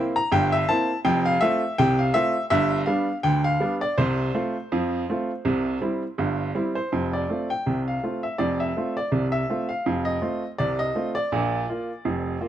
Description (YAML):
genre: ragtime piano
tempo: 82 BPM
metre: 2/4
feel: swing 56% on 16ths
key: F major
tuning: A4 = 440 Hz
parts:
  - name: clear upright piano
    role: solo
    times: 0.0-12.5 s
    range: F1 to Bb5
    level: -22 LUFS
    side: equal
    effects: none
room: small room ambience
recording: dry, close 1970s-style studio recording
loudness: -22 LUFS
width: side -11 dB against mid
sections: 0.0-6.9 A section; 6.9-12.5 B section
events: none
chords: 0.0 C7; 1.0 F; 2.5 G; 4.0 F/C; 5.5 C; 6.9 F; 11.3 Bb